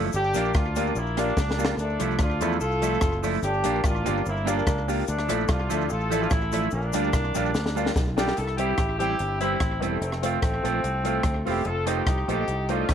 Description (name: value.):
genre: ska.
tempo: 146 BPM.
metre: 4/4.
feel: swing 53% on 8ths.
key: C mixolydian.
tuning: A4 = 440 Hz.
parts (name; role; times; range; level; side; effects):
clean electric guitar; accompaniment; 0.0-12.9 s; F3 to F4; -30 LUFS; right 12 dB; none.
warm upright piano; stabs; 0.0-12.8 s; E4 to F5; -32 LUFS; left 10 dB; slapback echo.
fingered electric bass; bass; 0.0-12.9 s; E1 to E2; -29 LUFS; equal; none.
mellow horn section; melody; 0.1-12.9 s; A3 to A4; -28 LUFS; left 1 dB; none.
compact cocktail drum kit; drums; 0.1-12.9 s; hi-hat, kick drum, rim click, snare drum; -27 LUFS; equal; slapback echo.
cabasa; percussion; 0.1-8.3 s; none; -42 LUFS; left 15 dB; slapback echo.
room: moderate spring reverb, RT60 1.4 s, studio reverb.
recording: 1960s-style stereo with parts hard left and right.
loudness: -22 LUFS.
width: side -8 dB against mid.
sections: 0.0-8.4 A section; 8.4-12.9 B section.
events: drum fill 1.4-1.8, 7.5-8.4.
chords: 0.1 Gm7; 1.8 Dmadd9; 3.4 Gm7; 5.1 Dmadd9; 6.7 Bb6; 8.4 C; 10.0 F; 11.7 F7.